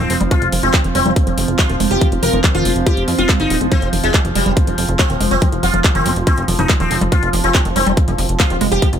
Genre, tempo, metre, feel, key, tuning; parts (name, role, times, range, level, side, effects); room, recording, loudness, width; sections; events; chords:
psychedelic trance; 141 BPM; 4/4; straight; A4 = 440 Hz
sitar; melody; 0.0-8.9 s; G3 to Bb4; -20 LUFS; left 1 dB; phaser, sidechain pumping, tape echo
overtone-sweeping drone; sustained chords; 0.0-9.0 s; F3; -25 LUFS; right 2 dB; chorus, built-in reverb, sidechain pumping
liquid acid bass; riff; 0.0-9.0 s; Eb3 to F4; -23 LUFS; moving between left 4 dB and right 5 dB; chorus, auto-pan, sidechain pumping, digital delay
plucky analog bass; bass; 0.0-9.0 s; Eb1 to F2; -20 LUFS; equal; tube saturation
warbly tape-like pad; texture; 0.0-9.0 s; C4 to C6; -25 LUFS; right 3 dB; chorus, built-in reverb, sidechain pumping
big-room dance drum kit; drums; 0.1-9.0 s; handclaps, hi-hat; -21 LUFS; equal
electronic kick drum; drums; 0.3-8.9 s; -14 LUFS; equal
light reverb, digital ambience; -13 LUFS; side -8 dB against mid
0.0-9.0 A section
0.0 F5